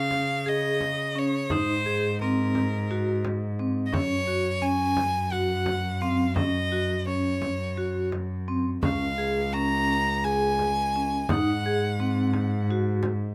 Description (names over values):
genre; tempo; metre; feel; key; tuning
contemporary instrumental, chamber music in an uneven meter; 172 BPM (eighths); 7/8; straight; Ab mixolydian; A4 = 440 Hz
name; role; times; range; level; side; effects
bright violin; melody; 0.0-12.7 s; Bb4 to Bb5; -31 LUFS; equal; none
vibraphone with medium hard mallets; arpeggios; 0.0-13.1 s; C4 to Ab4; -30 LUFS; equal; none
muted cello; bass; 0.0-13.3 s; Db2 to Db3; -31 LUFS; equal; none
frame drum; percussion; 0.1-13.3 s; none; -34 LUFS; equal; none
room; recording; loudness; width
little or no reverb; close, detailed microphones; -26 LUFS; mono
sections
0.0-13.3 A section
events
none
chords
0.0 Db; 1.5 Ab9; 3.9 Gb5; 8.8 Db6; 11.3 Ab7